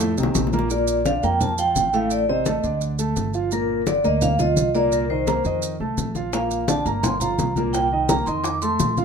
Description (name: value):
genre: Afro-Cuban jazz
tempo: 170 BPM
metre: 4/4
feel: straight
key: Bb major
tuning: A4 = 439 Hz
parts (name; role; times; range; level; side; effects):
- warm concert grand piano; accompaniment; 0.0-9.0 s; A2 to Bb5; -25 LUFS; right 2 dB; none
- upright bass; bass; 0.0-9.0 s; G1 to F2; -27 LUFS; equal; none
- bongos; percussion; 0.0-0.7, 6.3-9.0 s; none; -28 LUFS; left 5 dB; none
- congas; percussion; 0.0-9.0 s; none; -26 LUFS; left 2 dB; none
- maracas; percussion; 0.0-9.0 s; none; -32 LUFS; right 7 dB; none
- vibraphone with medium hard mallets; melody; 0.7-8.9 s; Bb4 to D6; -22 LUFS; equal; none
room: moderate club reverb, RT60 0.9 s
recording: minimal, uncompressed stereo recording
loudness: -19 LUFS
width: side -6 dB against mid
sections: 0.7-9.0 A section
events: drum fill 0.0-0.7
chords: 0.0 F7; 0.7 Bbmaj7; 2.1 Adim; 2.8 D5; 3.5 Gm7; 4.9 Cm7; 5.6 F7; 6.3 Bb; 7.0 Gm7; 7.7 Cm7; 8.4 F7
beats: 0.00 0.35 | 0.70 1.05 1.41 1.76 | 2.11 2.46 2.81 3.16 | 3.52 3.87 4.22 4.57 | 4.92 5.28 5.63 5.98 | 6.33 6.68 7.04 7.39 | 7.74 8.09 8.44 8.79